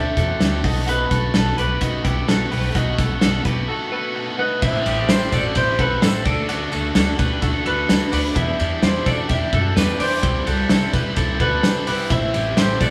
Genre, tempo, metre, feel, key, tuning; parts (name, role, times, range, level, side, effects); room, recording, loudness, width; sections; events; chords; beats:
jangly indie pop; 128 BPM; 4/4; straight; A4 = 440 Hz
clean electric guitar; melody; 0.0-12.9 s; A4 to E5; -26 LUFS; equal
overdriven electric guitar; accompaniment; 0.0-12.9 s; E2 to G4; -28 LUFS; equal
twelve-string electric guitar; arpeggios; 0.0-12.9 s; B3 to D5; -29 LUFS; equal
upright bass; bass; 0.0-12.9 s; A1 to F#2; -26 LUFS; equal
loose indie drum kit; drums; 0.2-12.9 s; crash cymbal, hi-hat, kick drum, ride cymbal, snare drum; -23 LUFS; equal
tambourine; percussion; 4.6-12.9 s; -41 LUFS; equal
wet stone room reverb, RT60 1.1 s; band playing live in one room; -20 LUFS; mono
0.0-4.6 A section; 4.6-12.9 B section
break 3.7-4.6
0.0 D7sus4; 0.6 B7; 4.6 Am; 6.3 D; 8.4 Em7; 10.2 C; 12.1 Am
0.41 | 0.88 1.34 1.81 2.28 | 2.75 3.22 3.69 4.15 | 4.62 5.09 5.56 6.02 | 6.49 6.96 7.43 7.89 | 8.36 8.83 9.30 9.77 | 10.23 10.70 11.17 11.64 | 12.11 12.57